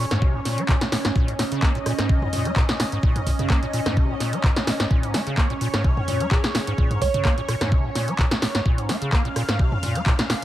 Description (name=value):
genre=acid house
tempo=128 BPM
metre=4/4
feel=swing 54% on 16ths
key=Bb minor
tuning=A4 = 439 Hz
part: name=lush unison pad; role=sustained chords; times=0.0-10.4 s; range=Db4 to F5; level=-28 LUFS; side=right 1 dB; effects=chorus, phaser, sidechain pumping
part: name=acid bass, square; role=riff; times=0.0-10.4 s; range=Ab2 to Bb3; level=-26 LUFS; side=equal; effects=tube saturation, analog chorus, dub echo
part: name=punchy analog drum machine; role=drums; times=0.1-10.4 s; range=handclaps, hi-hat, rim click, snare drum, toms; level=-25 LUFS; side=equal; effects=none
part: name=electronic kick drum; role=drums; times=0.2-10.2 s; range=none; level=-20 LUFS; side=equal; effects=none
part: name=thumb-piano-like synth pluck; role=melody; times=6.3-7.5 s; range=Ab4 to Db5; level=-29 LUFS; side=right 6 dB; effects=chorus, phaser, dub echo
room=light reverb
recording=none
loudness=-19 LUFS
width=side -13 dB against mid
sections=0.0-10.4 A section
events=none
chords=0.0 Bbm7